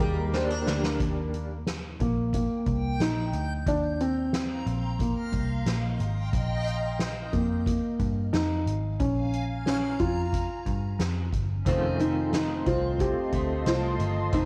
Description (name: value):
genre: dream pop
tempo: 90 BPM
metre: 4/4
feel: straight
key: Eb major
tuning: A4 = 440 Hz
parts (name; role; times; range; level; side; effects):
- felt-muted upright piano; melody; 0.0-14.5 s; Bb3 to Eb5; -32 LUFS; equal; cassette tape, tape echo
- mellow electric guitar; accompaniment; 0.0-1.5, 11.7-14.5 s; F2 to G4; -35 LUFS; equal; tremolo, analog chorus
- warm analog pad; sustained chords; 0.0-1.0, 11.7-14.5 s; G3 to D6; -40 LUFS; equal; chorus
- picked twelve-string acoustic guitar; arpeggios; 0.0-1.6, 11.7-14.5 s; Eb3 to D4; -34 LUFS; equal; lush chorus, tape echo
- vintage muted picked electric bass; bass; 0.0-14.5 s; F1 to G2; -32 LUFS; equal; none
- soft-mallet drum kit; drums; 0.0-14.5 s; hi-hat, kick drum, ride cymbal, snare drum; -34 LUFS; equal; none
- backwards swelling texture; texture; 2.8-12.0 s; Db4 to C6; -40 LUFS; equal; built-in reverb, tape echo
room: light reverb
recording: home recording on cassette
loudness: -28 LUFS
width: mono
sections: 1.0-14.5 A section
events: drum fill 0.3-1.0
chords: 0.0 Ebmaj7; 6.3 Bbm; 11.7 F7